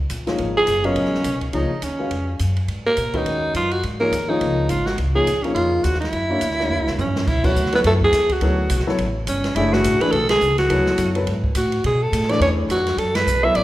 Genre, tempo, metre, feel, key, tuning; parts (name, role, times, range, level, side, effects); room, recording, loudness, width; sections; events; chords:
modal jazz; 210 BPM; 4/4; swing 59% on 8ths; G# dorian, B dorian from 7.3 s; A4 = 440 Hz
upright bass; bass; 0.0-13.6 s; F#1 to B2; -23 LUFS; equal
open jazz drum kit; drums; 0.1-13.6 s; crash cymbal, hi-hat, kick drum, ride cymbal, snare drum, toms; -28 LUFS; right 1 dB
warm grand piano; accompaniment; 0.3-13.6 s; D#3 to E#5; -24 LUFS; left 2 dB
growling alto saxophone; melody; 0.6-13.6 s; C#4 to E5; -20 LUFS; right 1 dB
moderate recital hall reverb, RT60 1.5 s; recorded in a church or concert hall; -17 LUFS; side -15 dB against mid
0.0-7.3 A section; 7.3-13.6 B section
drum fill 6.7-7.3; band accent 7.4, 10.3, 13.1
0.0 G#9sus4; 6.1 F#7b13; 7.3 Bm11